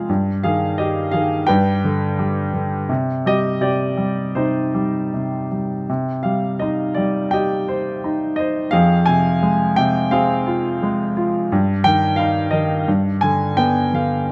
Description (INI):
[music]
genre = classical, lyrical solo piano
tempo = 77-91 BPM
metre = 4/4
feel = rubato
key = C minor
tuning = A4 = 439 Hz
[part]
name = clear grand piano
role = solo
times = 0.0-14.3 s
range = F2 to Bb5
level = -19 LUFS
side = equal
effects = none
[sound]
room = light reverb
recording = close, detailed microphones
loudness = -19 LUFS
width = mono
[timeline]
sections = 0.0-5.9 A section; 5.9-14.3 A section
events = none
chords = 0.1 Fm9/G; 1.5 G; 2.9 Cm; 8.7 Fm; 11.5 Ebadd9/G; 12.9 G